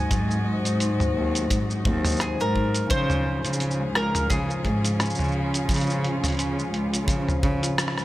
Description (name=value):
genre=folktronica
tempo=86 BPM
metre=4/4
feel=swing 56% on 16ths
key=unclear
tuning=A4 = 441 Hz
part: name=mandolin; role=melody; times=0.0-7.7 s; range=Ab4 to Ab5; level=-30 LUFS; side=right 1 dB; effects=tape echo
part: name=rich string quartet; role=sustained chords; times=0.0-8.0 s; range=Db3 to Eb5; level=-33 LUFS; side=equal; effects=none
part: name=concert harp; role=arpeggios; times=0.0-8.0 s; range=F3 to F4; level=-30 LUFS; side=left 3 dB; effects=tape echo
part: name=warm cello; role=bass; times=0.0-7.6 s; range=Db2 to Db3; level=-26 LUFS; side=equal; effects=tube saturation
part: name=kick drum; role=drums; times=0.1-7.6 s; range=none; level=-30 LUFS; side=equal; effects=small room ambience
part: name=lo-fi sampler-style drum kit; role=drums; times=0.1-8.0 s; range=cabasa, hi-hat, rim click, toms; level=-28 LUFS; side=equal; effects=small room ambience
room=small room reverb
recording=none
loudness=-22 LUFS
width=side -16 dB against mid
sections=0.0-8.0 A section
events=band accent 7.8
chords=0.0 Ab7; 2.9 Db